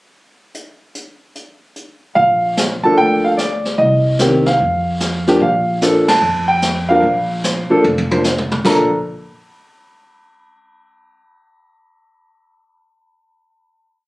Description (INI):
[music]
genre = jazz piano trio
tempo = 148 BPM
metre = 4/4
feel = swing 66% on 8ths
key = Bb major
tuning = A4 = 440 Hz
[part]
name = jazz brush drum kit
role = drums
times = 0.5-8.8 s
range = brushed snare drum, crash cymbal, hi-hat, kick drum, ride cymbal, snare drum, toms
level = -21 LUFS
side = equal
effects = none
[part]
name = warm baby grand piano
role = melody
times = 2.2-8.9 s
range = Eb3 to Bb5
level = -14 LUFS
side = equal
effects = none
[part]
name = upright bass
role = bass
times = 2.2-8.9 s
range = F1 to F2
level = -21 LUFS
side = equal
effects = none
[sound]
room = moderate studio ambience, RT60 0.5 s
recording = recorded on a phone in the room, club reverb, compression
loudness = -13 LUFS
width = side -20 dB against mid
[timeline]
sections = 0.5-2.2 pickup bar; 2.2-8.6 A section; 8.6-10.3 final chord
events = band accent 6.0; drum fill 7.8-8.6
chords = 0.5 N.C.; 2.2 Bbmaj7; 3.8 Cm7; 4.6 N.C.; 5.4 Bbmaj7(no3); 8.6 N.C.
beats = | 0.54 0.95 1.35 1.76 | 2.17 2.57 2.98 3.38 | 3.79 4.20 4.60 5.01 | 5.41 5.82 6.22 6.63 | 7.03 7.43 7.84 8.24 | 8.64